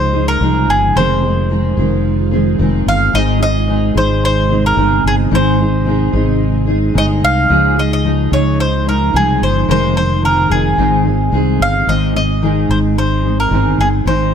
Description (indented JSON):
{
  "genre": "acoustic pop",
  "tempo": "110 BPM",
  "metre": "4/4",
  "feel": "straight",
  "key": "Ab major",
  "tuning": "A4 = 440 Hz",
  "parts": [
    { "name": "bowl-back mandolin", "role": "melody", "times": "0.0-14.3 s", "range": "Ab4 to F5", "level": "-17 LUFS", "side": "equal", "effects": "none" },
    { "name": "fingerpicked steel-string acoustic guitar", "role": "accompaniment", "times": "0.0-14.3 s", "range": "F2 to Ab4", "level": "-16 LUFS", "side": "equal", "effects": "double-tracked left and right" },
    { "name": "ethereal airy pad", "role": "sustained chords", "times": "0.0-11.9 s", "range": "C3 to F4", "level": "-24 LUFS", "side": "equal", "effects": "none" },
    { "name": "mellow fretless electric bass", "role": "bass", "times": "0.0-14.3 s", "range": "F1 to Db2", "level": "-16 LUFS", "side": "equal", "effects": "none" }
  ],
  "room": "light reverb, studio reverb",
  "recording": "none",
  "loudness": "-11 LUFS",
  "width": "side -8 dB against mid",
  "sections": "0.0-11.9 A section; 11.9-14.3 B section",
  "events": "none",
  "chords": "0.0 Dbadd9; 1.0 Fm7; 3.1 Ab; 7.5 Dbadd9; 9.7 Fm7; 10.8 Ab"
}